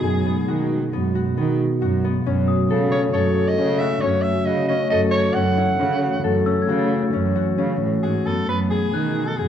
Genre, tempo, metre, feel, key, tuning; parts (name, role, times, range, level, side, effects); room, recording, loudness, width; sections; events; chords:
contemporary instrumental, chamber music in an uneven meter; 135 BPM; 7/4; straight; F# dorian; A4 = 442 Hz
raspy soprano saxophone; melody; 0.0-9.5 s; G#4 to F#5; -25 LUFS; right 2 dB
glassy FM pad; sustained chords; 0.0-9.5 s; B2 to F#4; -25 LUFS; equal; ensemble chorus, built-in reverb
concert harp; arpeggios; 0.0-9.5 s; B3 to A4; -24 LUFS; left 8 dB
dark cello; bass; 0.0-9.5 s; F#2 to D#3; -22 LUFS; right 4 dB
glockenspiel with rubber mallets; texture; 2.5-9.5 s; D#6 to A6; -34 LUFS; left 4 dB
wet scoring stage reverb, RT60 1.5 s; dark, warm production; -18 LUFS; side -9 dB against mid
0.0-8.5 A section
0.0 G#m7/F#; 2.3 F#m; 5.4 F#m7; 8.5 G#m7/F#